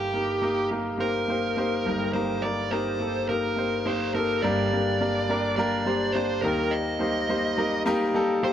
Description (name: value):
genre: pop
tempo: 105 BPM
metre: 4/4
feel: straight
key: unclear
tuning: A4 = 440 Hz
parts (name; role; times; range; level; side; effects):
- dark smooth lead guitar; melody; 0.0-8.5 s; G4 to Eb5; -27 LUFS; equal; overdrive, tape echo
- bright concert grand piano; accompaniment; 0.0-8.5 s; G1 to C5; -25 LUFS; equal; none
room: moderate plate reverb, RT60 3.0 s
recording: echo-heavy mix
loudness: -23 LUFS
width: side -10 dB against mid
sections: 0.0-4.4 A section; 4.4-8.5 B section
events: none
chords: 0.0 Eb/G; 4.4 Gm; 6.4 Eb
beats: 0.43 1.00 1.58 | 2.15 2.72 3.29 3.86 | 4.43 5.00 5.58 6.15 | 6.72 7.29 7.86 8.43